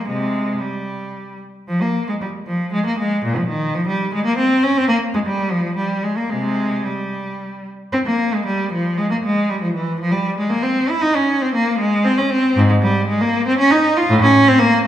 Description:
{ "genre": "classical, baroque-style suite movement for unaccompanied cello", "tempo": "108-121 BPM", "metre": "3/4", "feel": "rubato", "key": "unclear", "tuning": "A4 = 440 Hz", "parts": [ { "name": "rich cello", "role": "solo", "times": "0.0-14.9 s", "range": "Ab2 to F4", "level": "-16 LUFS", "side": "equal", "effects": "none" } ], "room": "wet recital hall reverb, RT60 1.6 s", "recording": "recorded in a church or concert hall", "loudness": "-16 LUFS", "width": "side -11 dB against mid", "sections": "0.0-7.9 A section; 7.9-14.9 B section", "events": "none", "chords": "none", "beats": "| 0.07 0.60 1.13 | 1.68 2.21 2.73 | 3.24 3.75 4.26 | 4.76 5.26 5.77 | 6.30 6.84 7.38 | 7.93 8.46 8.98 | 9.48 9.99 10.50 | 11.01 11.52 12.03 | 12.55 13.08 13.59 | 14.09 14.60" }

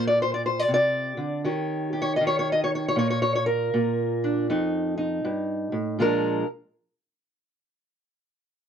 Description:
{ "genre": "acoustic country blues, solo or duo", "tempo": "80 BPM", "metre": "4/4", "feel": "swing 64% on 8ths", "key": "Bb mixolydian", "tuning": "A4 = 439 Hz", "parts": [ { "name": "fingerpicked steel-string acoustic guitar", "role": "solo", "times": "0.0-6.5 s", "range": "F2 to Eb5", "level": "-22 LUFS", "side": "equal", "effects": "none" } ], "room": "light reverb", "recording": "dry, close 1970s-style studio recording", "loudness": "-23 LUFS", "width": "side -8 dB against mid", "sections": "0.0-6.0 A section; 6.0-8.7 B section", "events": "none", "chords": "0.0 Bb; 1.5 Eb7; 3.0 Bb; 4.5 F7; 6.0 Bb7", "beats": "0.71 1.47 2.22 | 2.98 3.73 4.49 5.24 | 5.99" }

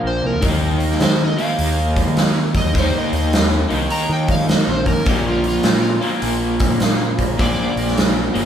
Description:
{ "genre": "blues rock power trio and southern rock", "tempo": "103 BPM", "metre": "4/4", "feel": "swing 65% on 8ths", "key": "unclear", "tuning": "A4 = 440 Hz", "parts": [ { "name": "overdriven tonewheel organ", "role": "sustained chords", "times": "0.0-8.5 s", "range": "Bb3 to C5", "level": "-31 LUFS", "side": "right 4 dB", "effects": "slow rotary speaker, chorus vibrato" }, { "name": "crunchy overdriven guitar", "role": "riff", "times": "0.0-8.5 s", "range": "Bb2 to Eb4", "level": "-21 LUFS", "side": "left 1 dB", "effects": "tremolo" }, { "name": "growling picked electric bass", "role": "bass", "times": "0.0-8.5 s", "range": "G1 to Eb3", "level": "-22 LUFS", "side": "equal", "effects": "overdrive" }, { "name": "overdriven slide guitar", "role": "melody", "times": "0.1-8.0 s", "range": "F4 to Bb5", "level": "-24 LUFS", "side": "right 1 dB", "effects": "none" }, { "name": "big rock drum kit", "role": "drums", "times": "0.4-8.4 s", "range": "hi-hat, kick drum, snare drum", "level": "-19 LUFS", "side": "equal", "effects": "none" } ], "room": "moderate large studio reverb, RT60 1.5 s", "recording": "band playing live in one room", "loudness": "-15 LUFS", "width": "side -9 dB against mid", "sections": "0.0-8.5 A section", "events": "none", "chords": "0.4 Eb; 5.1 Bb", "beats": "| 0.43 1.01 1.59 2.17 | 2.75 3.33 3.91 4.49 | 5.07 5.65 6.23 6.81 | 7.39 7.97" }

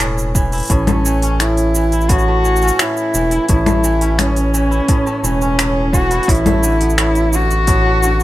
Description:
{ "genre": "folktronica", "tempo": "86 BPM", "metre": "4/4", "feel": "straight", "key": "A major", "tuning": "A4 = 439 Hz", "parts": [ { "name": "kora", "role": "arpeggios", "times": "0.0-8.2 s", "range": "A2 to F#4", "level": "-22 LUFS", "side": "equal", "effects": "none" }, { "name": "round analog bass", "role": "bass", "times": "0.0-8.2 s", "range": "E1 to A1", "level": "-17 LUFS", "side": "equal", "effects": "tube saturation" }, { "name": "organic electronic drum kit", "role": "drums", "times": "0.0-8.2 s", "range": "congas, finger snaps, hi-hat, shaker", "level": "-19 LUFS", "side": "left 1 dB", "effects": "none" }, { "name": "electronic kick drum", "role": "drums", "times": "0.3-7.8 s", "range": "none", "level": "-16 LUFS", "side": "equal", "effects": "none" }, { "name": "dark cello", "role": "melody", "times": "0.7-8.2 s", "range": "C#4 to F#4", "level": "-17 LUFS", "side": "equal", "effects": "none" } ], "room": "little or no reverb", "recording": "none", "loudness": "-12 LUFS", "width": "side -15 dB against mid", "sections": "0.0-8.2 A section", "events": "none", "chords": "0.0 A; 6.3 Bm7", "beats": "0.00 | 0.70 1.40 2.09 2.79 | 3.49 4.19 4.88 5.58 | 6.28 6.98 7.67" }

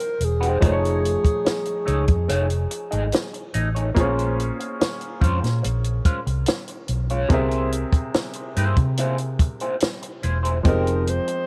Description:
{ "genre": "lush 1970s-style soul", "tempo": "72 BPM", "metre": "4/4", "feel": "straight", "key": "F minor", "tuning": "A4 = 440 Hz", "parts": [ { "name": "dark alto saxophone", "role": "melody", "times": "0.0-3.6, 10.7-11.5 s", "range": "Ab4 to C5", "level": "-28 LUFS", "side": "equal", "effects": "none" }, { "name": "warm baby grand piano", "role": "accompaniment", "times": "0.0-11.5 s", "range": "C3 to G5", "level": "-30 LUFS", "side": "equal", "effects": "none" }, { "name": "electric guitar at the edge of break-up", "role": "riff", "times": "0.0-11.3 s", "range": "Ab3 to Eb5", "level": "-31 LUFS", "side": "equal", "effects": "wah" }, { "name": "compact cocktail drum kit", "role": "drums", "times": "0.0-11.5 s", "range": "hi-hat, kick drum, snare drum", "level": "-25 LUFS", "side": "equal", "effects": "none" }, { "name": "vintage muted fingered electric bass", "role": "bass", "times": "0.2-11.2 s", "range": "E1 to C3", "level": "-25 LUFS", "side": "equal", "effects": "none" } ], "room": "light reverb, studio reverb", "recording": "none", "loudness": "-22 LUFS", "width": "mono", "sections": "0.0-11.5 A section", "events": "none", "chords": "0.0 Fm11; 0.6 F7alt; 4.0 Bbm9; 7.3 C7b13; 10.6 Fm9", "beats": "| 0.62 1.46 2.29 3.13 | 3.96 4.80 5.63 6.47 | 7.30 8.14 8.98 9.81 | 10.65" }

